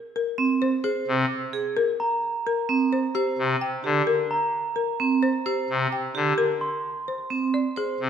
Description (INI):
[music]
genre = classical, minimalist pattern music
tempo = 130 BPM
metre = 5/4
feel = straight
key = unclear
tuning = A4 = 440 Hz
[part]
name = folk marimba with hard mallets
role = melody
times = 0.2-8.1 s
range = G4 to G5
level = -28 LUFS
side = left 6 dB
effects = none
[part]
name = vibraphone with hard mallets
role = arpeggios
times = 0.4-8.1 s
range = C4 to C5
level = -25 LUFS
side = right 6 dB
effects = none
[part]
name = pipe organ, trumpet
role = accompaniment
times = 1.1-8.1 s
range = C3 to D3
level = -26 LUFS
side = left 2 dB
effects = none
[part]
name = glockenspiel with rubber mallets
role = arpeggios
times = 2.0-6.9 s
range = Bb5 to C6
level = -30 LUFS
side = right 3 dB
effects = none
[sound]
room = moderate scoring stage reverb, RT60 1.7 s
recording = none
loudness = -22 LUFS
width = side -8 dB against mid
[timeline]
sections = 0.0-8.1 A section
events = none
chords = 0.0 Abadd9/C; 2.0 C5; 6.6 Fm (rootless)